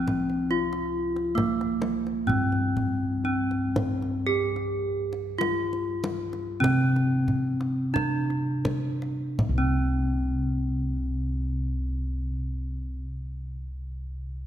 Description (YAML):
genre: Javanese gamelan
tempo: 40-72 BPM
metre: 4/4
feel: straight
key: C slendro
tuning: A4 = 440 Hz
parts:
  - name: gamelan-type bronze metallophone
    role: melody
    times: 0.0-13.0 s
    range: Bb3-45c to G4+25c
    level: -27 LUFS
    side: equal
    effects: none
  - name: gamelan-type bossed gongs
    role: bass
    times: 0.0-12.9 s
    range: C2 to G4+25c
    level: -29 LUFS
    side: equal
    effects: none
  - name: kendang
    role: percussion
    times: 0.1-10.1 s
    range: none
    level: -32 LUFS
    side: equal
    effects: none
room: moderate concert hall reverb, RT60 2.1 s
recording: none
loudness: -24 LUFS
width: side -10 dB against mid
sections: 0.0-9.4 A section; 9.4-14.5 B section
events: slowing down 0.5-9.4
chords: none